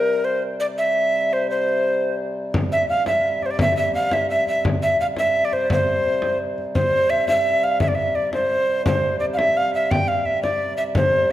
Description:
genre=medieval dance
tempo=114 BPM (dotted quarters)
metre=6/8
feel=straight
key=C major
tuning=A4 = 440 Hz
part: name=breathy alto recorder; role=melody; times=0.0-11.3 s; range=Bb4 to G5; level=-19 LUFS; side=equal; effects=none
part: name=hand-pumped harmonium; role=drone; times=0.0-11.3 s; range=C3 to G3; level=-28 LUFS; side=equal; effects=none
part: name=frame drum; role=percussion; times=2.5-11.2 s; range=none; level=-24 LUFS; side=left 1 dB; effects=none
room=wet recital hall reverb, RT60 1.7 s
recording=none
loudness=-18 LUFS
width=side -13 dB against mid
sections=0.0-6.8 A section; 6.8-11.3 B section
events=none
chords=none

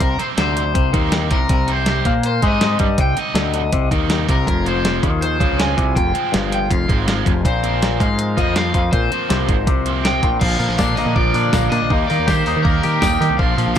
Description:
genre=indie rock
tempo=162 BPM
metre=4/4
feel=straight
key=unclear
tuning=A4 = 440 Hz
part: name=overdriven semi-hollow guitar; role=melody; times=0.0-13.8 s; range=Bb4 to Ab5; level=-22 LUFS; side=left 2 dB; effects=tape echo
part: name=twangy electric guitar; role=riff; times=0.0-13.8 s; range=F2 to G4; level=-22 LUFS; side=left 6 dB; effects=wide subtle chorus
part: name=growling picked electric bass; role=bass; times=0.0-13.8 s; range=F1 to Eb3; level=-21 LUFS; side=right 1 dB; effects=overdrive
part: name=detuned 8-bit digital drum machine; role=drums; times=0.0-13.8 s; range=crash cymbal, hi-hat, kick drum, snare drum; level=-19 LUFS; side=equal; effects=none
part: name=scooped high-gain guitar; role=riff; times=0.2-13.8 s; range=Bb2 to Eb4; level=-25 LUFS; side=right 11 dB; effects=distortion, lush chorus
part: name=combo organ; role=sustained chords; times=4.5-13.8 s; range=F3 to G5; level=-29 LUFS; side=right 3 dB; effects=none
part: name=tambourine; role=percussion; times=10.8-13.8 s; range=none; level=-34 LUFS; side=left 13 dB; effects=none
room=little or no reverb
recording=dark, warm production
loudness=-15 LUFS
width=side -9 dB against mid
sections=0.0-10.4 A section; 10.4-13.8 B section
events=none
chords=0.0 Cm7; 4.5 Fmadd9; 7.4 Bbsus2; 10.4 Bb; 11.9 Eb

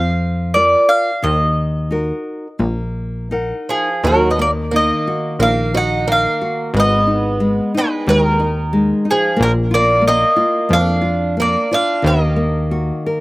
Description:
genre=fado-style ballad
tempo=89 BPM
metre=4/4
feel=rubato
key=Eb harmonic minor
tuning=A4 = 436 Hz
part: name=mandolin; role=melody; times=0.0-13.2 s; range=Ab4 to Gb5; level=-16 LUFS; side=equal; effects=slapback echo
part: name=nylon-string guitar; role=accompaniment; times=0.0-13.2 s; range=Eb3 to Gb5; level=-21 LUFS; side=left 2 dB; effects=none
part: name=plucky analog bass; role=bass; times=0.0-12.9 s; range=Ab1 to F2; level=-19 LUFS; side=equal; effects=none
part: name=picked twelve-string acoustic guitar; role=second line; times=3.7-13.2 s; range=Eb3 to Eb4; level=-22 LUFS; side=right 2 dB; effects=none
room=little or no reverb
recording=recorded outdoors, with no room sound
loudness=-14 LUFS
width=side -20 dB against mid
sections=0.0-4.0 A section; 4.0-13.2 A section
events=none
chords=0.0 Bb; 1.2 Ebm; 6.7 Abmadd9; 9.4 Bb; 12.0 Ebm

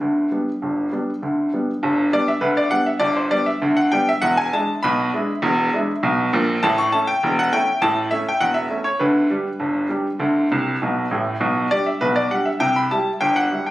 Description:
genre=ragtime piano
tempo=100 BPM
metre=2/4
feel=straight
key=G major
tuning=A4 = 440 Hz
part: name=clear baby grand piano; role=solo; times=0.0-13.7 s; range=E1 to C#6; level=-17 LUFS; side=equal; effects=none
room=light reverb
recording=recorded on a phone in the room, studio reverb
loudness=-17 LUFS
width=side -16 dB against mid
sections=0.0-1.8 A section; 1.8-13.7 B section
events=grand piano fill 10.5-11.4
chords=0.0 G; 4.2 E7; 6.6 A; 9.0 G/D; 10.2 D5; 11.4 G/B; 12.6 C

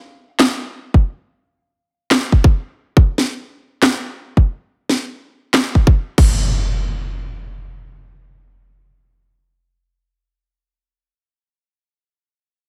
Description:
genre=future bass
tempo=140 BPM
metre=4/4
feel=swing 55% on 16ths, half-time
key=none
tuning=none
part: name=trap drum kit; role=drums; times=0.4-6.3 s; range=crash cymbal, handclaps, snare drum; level=-18 LUFS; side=equal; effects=overdrive
part: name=electronic kick drum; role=drums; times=0.9-6.3 s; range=none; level=-13 LUFS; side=equal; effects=overdrive
part: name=impact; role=sound effects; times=6.2-11.1 s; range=none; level=-23 LUFS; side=equal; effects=none
room=little or no reverb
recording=none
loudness=-17 LUFS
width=mono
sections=0.0-6.4 A section; 6.4-9.8 B section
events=none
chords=none

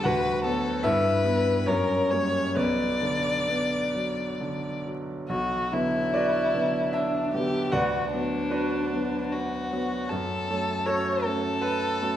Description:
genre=classical, romantic duo for violin and grand piano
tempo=65-80 BPM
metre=3/4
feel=rubato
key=B minor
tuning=A4 = 440 Hz
part: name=rich violin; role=melody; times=0.0-12.2 s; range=D4 to D5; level=-28 LUFS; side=left 2 dB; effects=none
part: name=bright concert grand piano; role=accompaniment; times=0.0-12.2 s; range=B1 to F#5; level=-26 LUFS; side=right 1 dB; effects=none
room=wet recital hall reverb, RT60 1.6 s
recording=minimal, uncompressed stereo recording, vinyl crackle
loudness=-24 LUFS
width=side -11 dB against mid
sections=0.0-5.3 A section; 5.3-12.2 B section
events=none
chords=0.1 Bm/D; 0.8 Em/G; 1.7 F#; 2.6 Bm; 7.7 Bm/D; 10.1 F#m

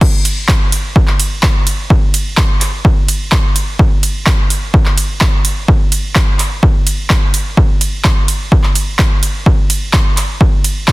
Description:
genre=EDM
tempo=127 BPM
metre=4/4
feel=straight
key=none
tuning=none
part: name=big-room dance drum kit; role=drums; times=0.0-10.9 s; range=crash cymbal, handclaps, hi-hat, ride cymbal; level=-17 LUFS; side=right 1 dB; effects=overdrive
part: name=electronic kick drum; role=drums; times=0.0-10.9 s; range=none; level=-11 LUFS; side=equal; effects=overdrive
room=little or no reverb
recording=dense, heavily limited modern master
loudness=-10 LUFS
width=side -20 dB against mid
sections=0.0-10.9 A section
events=none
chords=none

